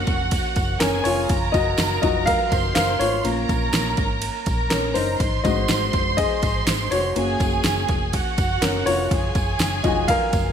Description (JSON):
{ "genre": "piano-driven pop", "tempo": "123 BPM", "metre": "4/4", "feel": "straight", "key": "unclear", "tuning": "A4 = 440 Hz", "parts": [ { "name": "dark symphonic violin section", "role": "second line", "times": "0.0-10.5 s", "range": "Gb4 to C6", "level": "-26 LUFS", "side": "right 3 dB", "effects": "none" }, { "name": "dark upright piano", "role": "accompaniment", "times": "0.0-10.5 s", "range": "Gb3 to F5", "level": "-23 LUFS", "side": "left 2 dB", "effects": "none" }, { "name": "vintage muted fingered electric bass", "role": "bass", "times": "0.0-10.5 s", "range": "F1 to Bb1", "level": "-27 LUFS", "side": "equal", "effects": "none" }, { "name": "deep house drum kit", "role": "drums", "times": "0.1-10.4 s", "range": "hi-hat, kick drum, ride cymbal, snare drum", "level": "-24 LUFS", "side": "equal", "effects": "overdrive, gated reverb" }, { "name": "tambourine", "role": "percussion", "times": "0.3-10.4 s", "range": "none", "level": "-38 LUFS", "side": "right 13 dB", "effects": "none" } ], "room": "light reverb, studio reverb", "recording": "bright 1980s-style digital production", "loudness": "-19 LUFS", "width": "side -8 dB against mid", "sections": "0.0-10.5 A section", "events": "upright piano solo 0.0-10.5", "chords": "0.0 Gb; 1.3 Ebmadd9; 3.2 Bbm; 5.2 Ab; 7.2 Gb; 9.1 Ebmadd9" }